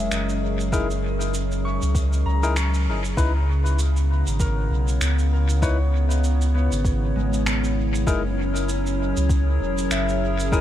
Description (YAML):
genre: ambient dub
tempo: 98 BPM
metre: 4/4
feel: swing 57% on 16ths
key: C# dorian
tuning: A4 = 443 Hz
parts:
  - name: warbly tape-like pad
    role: sustained chords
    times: 0.0-10.6 s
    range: C#3 to C#5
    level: -27 LUFS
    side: right 1 dB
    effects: chorus, built-in reverb
  - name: concert harp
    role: arpeggios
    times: 0.0-10.6 s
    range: G#3 to C#6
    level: -32 LUFS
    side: left 2 dB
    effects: dub echo
  - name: warm sub bass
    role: bass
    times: 0.0-10.6 s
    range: E1 to C#2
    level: -22 LUFS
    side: equal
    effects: tube saturation
  - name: wind-like tuned noise texture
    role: texture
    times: 0.0-3.2 s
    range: C#4 to C#5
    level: -44 LUFS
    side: right 1 dB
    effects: none
  - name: electronic finger snaps and shaker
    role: drums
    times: 0.1-10.6 s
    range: none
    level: -31 LUFS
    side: right 1 dB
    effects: dub echo
  - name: barky tine electric piano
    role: stabs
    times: 0.7-10.6 s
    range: D#4 to B4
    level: -31 LUFS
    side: left 5 dB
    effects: dub echo
  - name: electronic kick drum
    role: drums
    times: 0.7-10.6 s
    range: none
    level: -23 LUFS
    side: equal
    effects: none
room: light reverb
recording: none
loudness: -20 LUFS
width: side -12 dB against mid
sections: 0.0-3.2 A section; 3.2-10.6 B section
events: band accent 2.6-2.9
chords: 0.0 F#13; 3.2 C#m7; 8.1 F#9